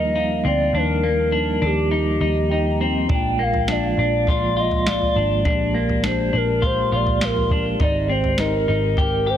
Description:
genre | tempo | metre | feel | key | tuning
dream pop | 102 BPM | 4/4 | straight | Bb mixolydian | A4 = 440 Hz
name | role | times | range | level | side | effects
hollow clarinet-like synth lead | melody | 0.0-9.4 s | G4 to G5 | -23 LUFS | equal | chorus, ping-pong delay
mellow tonewheel organ | sustained chords | 0.0-9.4 s | Eb3 to G4 | -26 LUFS | right 3 dB | fast rotary speaker
semi-hollow electric guitar | arpeggios | 0.0-9.4 s | Bb3 to G4 | -24 LUFS | left 3 dB | wide subtle chorus, ping-pong delay
vintage muted picked electric bass | bass | 0.0-9.4 s | Ab1 to Eb2 | -24 LUFS | equal | none
vibraphone with medium mallets | texture | 0.2-4.3 s | F5 to Bb5 | -36 LUFS | right 4 dB | ping-pong delay
soft vintage rhythm box | drums | 3.1-9.1 s | kick drum, snare drum, toms | -24 LUFS | right 1 dB | none
room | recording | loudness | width
moderate scoring stage reverb, RT60 2.1 s | heavily compressed radio sound | -17 LUFS | side -10 dB against mid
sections
0.0-9.4 A section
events
none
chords
0.0 Ebmaj7; 3.1 Bb7; 7.8 Abmaj7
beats
0.15 | 0.74 1.32 1.91 2.50 | 3.09 3.68 4.27 4.85 | 5.44 6.03 6.62 7.21 | 7.80 8.38 8.97

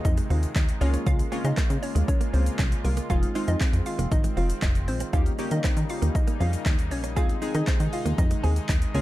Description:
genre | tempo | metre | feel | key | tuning
dance-pop | 118 BPM | 4/4 | straight | unclear | A4 = 441 Hz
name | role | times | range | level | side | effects
hollow square pluck | melody | 0.0-9.0 s | Bb3 to Ab5 | -34 LUFS | equal | chorus, dub echo
chorused retro synth keys | accompaniment | 0.0-9.0 s | Ab3 to Ab4 | -33 LUFS | left 1 dB | sidechain pumping
sweeping resonant pad | sustained chords | 0.0-9.0 s | C3 to F4 | -35 LUFS | equal | chorus, sidechain pumping
plucky analog bass | bass | 0.0-9.0 s | F1 to Eb3 | -25 LUFS | equal | sidechain pumping
punchy analog drum machine | drums | 0.0-9.0 s | handclaps, hi-hat, kick drum, shaker | -25 LUFS | equal | overdrive
direct-recorded clean electric guitar | riff | 0.1-9.0 s | Ab3 to Ab4 | -36 LUFS | right 9 dB | analog chorus
egg shaker | percussion | 0.1-8.9 s | none | -50 LUFS | left 12 dB | none
room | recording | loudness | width
little or no reverb | dark, warm production | -22 LUFS | side -16 dB against mid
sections
0.0-9.0 A section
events
none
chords
0.0 Ab; 0.8 Db6; 3.1 Fm7; 5.1 Eb7; 7.2 Ab/Eb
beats
0.05 0.56 | 1.06 1.57 2.08 2.59 | 3.10 3.61 4.12 4.62 | 5.13 5.64 6.15 6.66 | 7.17 7.67 8.18 8.69

